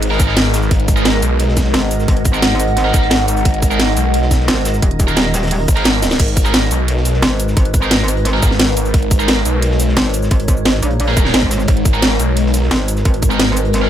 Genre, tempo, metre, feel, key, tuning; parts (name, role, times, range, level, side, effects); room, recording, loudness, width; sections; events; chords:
dark technical drum and bass; 175 BPM; 4/4; straight; G# minor; A4 = 440 Hz
swarming drone; sustained chords; 0.0-13.9 s; G#3 to D#5; -21 LUFS; equal; built-in reverb, phaser, sidechain pumping
snarling distorted saw bass; bass; 0.0-12.7 s; G#1 to B1; -16 LUFS; equal; distortion
crunchy breakbeat drum kit; drums; 0.0-13.9 s; hi-hat, snare drum; -29 LUFS; equal
drum and bass drum kit; drums; 0.0-13.8 s; crash cymbal, hi-hat, shaker, snare drum; -17 LUFS; equal; overdrive
warbly tape-like pad; texture; 0.0-6.2 s; G#4 to F#5; -25 LUFS; right 1 dB; chorus, built-in reverb, sidechain pumping
heavy high-gain guitar; stabs; 0.1-13.9 s; B3 to A#4; -22 LUFS; right 2 dB; distortion, ping-pong delay
electronic kick drum; drums; 0.2-13.3 s; -14 LUFS; equal; overdrive
metallic wobble bass; bass; 1.7-13.9 s; D#1 to A#1; -17 LUFS; equal; chorus
little or no reverb; -12 LUFS; side -10 dB against mid
0.0-6.2 A section; 6.2-13.9 A section
drop 0.0-6.2, 6.2-13.9; drum fill 6.0
0.0 G#madd9